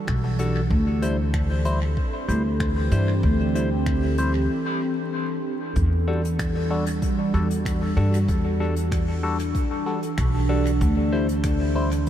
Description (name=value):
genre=ambient dub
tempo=95 BPM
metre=4/4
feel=straight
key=E minor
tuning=A4 = 440 Hz
part: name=warbly tape-like pad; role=sustained chords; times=0.0-12.1 s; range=E3 to A4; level=-26 LUFS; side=right 1 dB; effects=chorus, built-in reverb, phaser
part: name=concert harp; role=arpeggios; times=0.0-1.0 s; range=none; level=barely audible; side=none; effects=none
part: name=upright bass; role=bass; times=0.1-12.0 s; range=B1 to G2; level=-23 LUFS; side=equal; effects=none
part: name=electronic kick drum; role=drums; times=0.1-12.1 s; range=none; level=-26 LUFS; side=equal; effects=none
part: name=jazz brush drum kit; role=drums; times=0.1-12.1 s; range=finger snaps, hi-hat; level=-38 LUFS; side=left 1 dB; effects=dub echo
part: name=barky tine electric piano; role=stabs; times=0.4-11.9 s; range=G3 to C5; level=-30 LUFS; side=left 2 dB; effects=phaser, dub echo
room=moderate huge ambient reverb, RT60 6.5 s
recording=dreamy mix soaked in reverb, vinyl crackle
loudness=-20 LUFS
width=side -10 dB against mid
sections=0.0-5.8 A section; 5.8-12.1 A section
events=break 4.5-5.8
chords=0.0 Em11; 0.7 D9sus4; 5.8 Em11; 10.8 D9sus4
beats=0.08 | 0.71 1.34 1.97 2.60 | 3.23 3.87 4.50 5.13 | 5.76 6.39 7.02 7.66 | 8.29 8.92 9.55 10.18 | 10.81 11.45 12.08